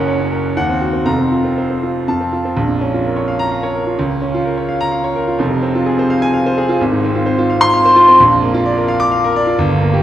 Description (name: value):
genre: classical, virtuoso piano study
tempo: 128 BPM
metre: 3/4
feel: rubato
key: Bb minor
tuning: A4 = 440 Hz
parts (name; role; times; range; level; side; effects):
- clear grand piano; solo; 0.0-10.0 s; F1 to D6; -12 LUFS; equal; none
room: wet concert hall reverb, RT60 2.5 s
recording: none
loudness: -12 LUFS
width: side -12 dB against mid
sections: 0.0-2.6 A section; 2.6-10.0 B section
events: none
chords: 0.0 Gb; 0.6 Cdim/Eb; 1.1 Fsus4; 2.1 F; 2.6 Bbm; 4.0 Bbm/Db; 5.4 Fm; 6.8 Fm/Ab; 8.2 Bb